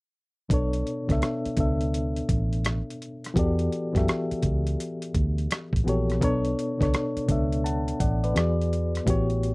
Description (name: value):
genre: R&B, neo-soul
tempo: 84 BPM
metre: 4/4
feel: swing 64% on 16ths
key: B minor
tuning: A4 = 445 Hz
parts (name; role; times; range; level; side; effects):
- reed electric piano; accompaniment; 0.5-9.5 s; A2 to A5; -27 LUFS; left 1 dB; fast tremolo
- vintage muted fingered electric bass; bass; 0.5-9.5 s; A1 to F#2; -26 LUFS; equal; none
- dusty soul sampler-style drum kit; drums; 0.5-9.5 s; hi-hat, kick drum, rim click; -27 LUFS; equal; none
room: little or no reverb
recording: dry, close 1970s-style studio recording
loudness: -23 LUFS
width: side -25 dB against mid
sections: 0.5-9.5 A section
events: none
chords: 0.5 Bm9; 3.4 Em11; 6.2 Bm9; 8.4 E9